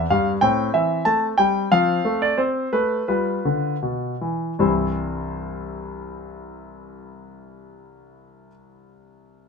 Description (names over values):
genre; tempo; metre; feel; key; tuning
classical-period piano sonatina; 76-96 BPM; 4/4; straight; C major; A4 = 440 Hz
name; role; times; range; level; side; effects
bright concert grand piano; solo; 0.0-9.5 s; C2 to A5; -20 LUFS; left 1 dB; none
room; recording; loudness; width
moderate studio reverb, RT60 0.6 s; none; -19 LUFS; side -5 dB against mid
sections
0.0-4.6 A section; 4.6-7.7 B section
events
slowing down 0.0-4.6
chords
0.4 Am; 1.7 F; 3.1 G7; 4.6 C